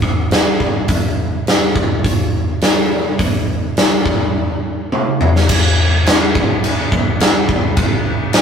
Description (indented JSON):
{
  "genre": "rock",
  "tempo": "104 BPM",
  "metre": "4/4",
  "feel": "straight",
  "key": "none",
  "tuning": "none",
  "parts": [
    { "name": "huge arena drum kit", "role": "drums", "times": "0.0-8.4 s", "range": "crash cymbal, hi-hat, kick drum, snare drum, toms", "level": "-13 LUFS", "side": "equal", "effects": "none" }
  ],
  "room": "light reverb",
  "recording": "rough rehearsal-room recording",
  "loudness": "-13 LUFS",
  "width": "side -7 dB against mid",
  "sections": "0.0-5.5 A section; 5.5-8.4 B section",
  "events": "drum fill 4.9-5.5",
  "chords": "none",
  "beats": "0.31 | 0.89 1.47 2.04 2.62 | 3.19 3.77 4.34 4.92 | 5.49 6.06 6.63 7.20 | 7.77 8.34"
}